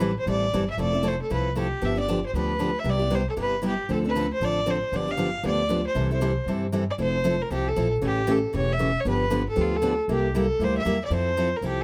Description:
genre	acoustic string swing (jazz manouche)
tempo	232 BPM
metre	4/4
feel	swing 57% on 8ths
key	C major, F major from 7.0 s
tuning	A4 = 439 Hz
part	rich violin	melody	0.0-11.8 s	F4 to F5	-29 LUFS	equal	none
part	picked steel-string acoustic guitar	accompaniment	0.0-11.8 s	C3 to A4	-29 LUFS	equal	none
part	upright bass	bass	0.0-11.8 s	E1 to G2	-31 LUFS	equal	none
room	light reverb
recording	none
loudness	-25 LUFS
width	mono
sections	0.0-7.0 A section; 7.0-11.8 B section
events	none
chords	0.0 Am7; 0.8 Fmaj7; 1.8 G7; 2.9 Cmaj7; 3.9 Dm7; 4.9 G7; 6.0 C6; 7.0 Fmaj7; 8.0 A7; 9.1 G7; 10.1 C7; 11.1 Fmaj7

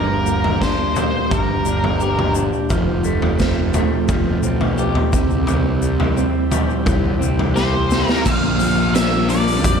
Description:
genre	psychedelic rock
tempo	86 BPM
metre	4/4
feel	straight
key	Bb lydian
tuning	A4 = 440 Hz
part	octave-fuzz lead guitar	melody	0.0-2.3, 7.6-9.8 s	Bb4 to F5	-22 LUFS	equal	distortion, slapback echo
part	combo organ	sustained chords	0.0-9.8 s	G3 to G4	-30 LUFS	right 6 dB	spring reverb
part	electric guitar through a small old amp	riff	0.0-9.8 s	G2 to G4	-21 LUFS	right 1 dB	harmonic tremolo
part	fuzz picked electric bass	bass	0.0-9.8 s	F1 to F2	-22 LUFS	equal	overdrive
part	tube shaker	percussion	0.3-9.8 s	none	-34 LUFS	left 20 dB	none
part	raw garage drum kit	drums	0.4-9.8 s	crash cymbal, hi-hat, kick drum, snare drum, toms	-20 LUFS	left 1 dB	none
room	small room ambience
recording	none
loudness	-15 LUFS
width	side -6 dB against mid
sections	0.0-8.3 A section; 8.3-9.8 B section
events	drum fill 7.6-8.3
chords	0.0 Gm; 2.7 Fadd9; 5.1 C; 8.3 Bb6

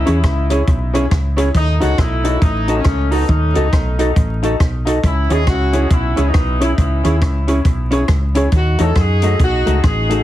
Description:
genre	ska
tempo	138 BPM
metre	4/4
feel	swing 61% on 8ths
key	C# minor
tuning	A4 = 440 Hz
part	warm horn section	melody	0.0-10.2 s	A3 to A4	-22 LUFS	left 1 dB	dub echo
part	fingered electric bass	bass	0.0-10.2 s	A1 to F#2	-17 LUFS	equal	none
part	hollow-body jazz guitar	accompaniment	0.1-10.2 s	A3 to A4	-22 LUFS	right 2 dB	dub echo
part	warm upright piano	stabs	0.1-10.2 s	C#4 to D#5	-24 LUFS	left 3 dB	dub echo
part	compact cocktail drum kit	drums	0.1-10.2 s	hi-hat, kick drum, rim click	-18 LUFS	equal	none
room	light reverb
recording	heavily compressed radio sound, vinyl crackle, faint mains hum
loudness	-13 LUFS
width	side -13 dB against mid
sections	0.0-10.2 A section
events	none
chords	0.0 C#m; 1.5 D#dim; 5.0 C#m; 8.5 D#dim

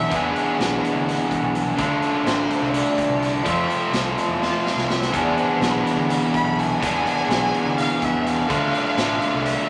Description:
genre	psychedelic rock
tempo	250 BPM (eighths)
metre	7/8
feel	straight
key	E phrygian dominant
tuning	A4 = 435 Hz
part	clear chamber string section	sustained chords	0.0-9.7 s	B4 to B5	-29 LUFS	equal	none
part	cranked stack guitar	riff	0.0-9.7 s	D3 to G#4	-23 LUFS	equal	overdrive
part	growling picked electric bass	bass	0.0-9.5 s	A1 to F2	-32 LUFS	equal	overdrive
part	raw garage drum kit	drums	0.1-9.6 s	hi-hat, kick drum, snare drum	-31 LUFS	equal	none
room	moderate studio reverb, RT60 0.8 s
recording	none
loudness	-21 LUFS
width	mono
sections	0.0-9.7 A section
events	drum fill 4.4-5.1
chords	0.0 E7; 1.8 Dm7; 3.5 Fmaj7; 5.1 E7; 8.5 Dm7

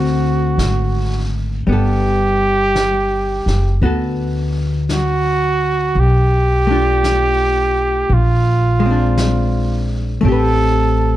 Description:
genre	jazz ballad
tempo	56 BPM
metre	4/4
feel	swing 66% on 8ths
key	G major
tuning	A4 = 439 Hz
part	warm trumpet	melody	0.0-11.2 s	F4 to A4	-18 LUFS	right 2 dB	none
part	archtop guitar, miked and amplified	accompaniment	0.0-11.2 s	D3 to B4	-21 LUFS	left 2 dB	none
part	upright bass	bass	0.0-11.2 s	F#1 to D2	-17 LUFS	equal	none
part	vintage brush drum kit	drums	0.6-11.2 s	brushed snare drum, hi-hat, snare drum	-29 LUFS	left 2 dB	none
room	little or no reverb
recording	dark, warm production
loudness	-14 LUFS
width	side -14 dB against mid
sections	0.0-1.7 A section; 1.7-11.2 A section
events	none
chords	0.0 D7; 1.7 Gmaj9; 6.0 Bm7b5; 8.1 Bb9; 10.2 Am9

